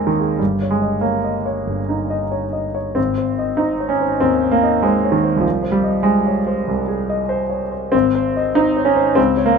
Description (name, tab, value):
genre	classical, romantic character piece for solo piano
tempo	95 BPM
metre	4/4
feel	uneven beats, rubato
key	Ab major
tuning	A4 = 439 Hz
part	clear concert grand piano	solo	0.0-9.6 s	G1 to Eb5	-16 LUFS	equal	none
room	light reverb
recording	minimal, uncompressed stereo recording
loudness	-16 LUFS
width	side -5 dB against mid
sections	0.0-9.6 A section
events	none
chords	0.4 Eb7/G; 3.0 Ab; 5.4 Ab/C; 7.9 Ab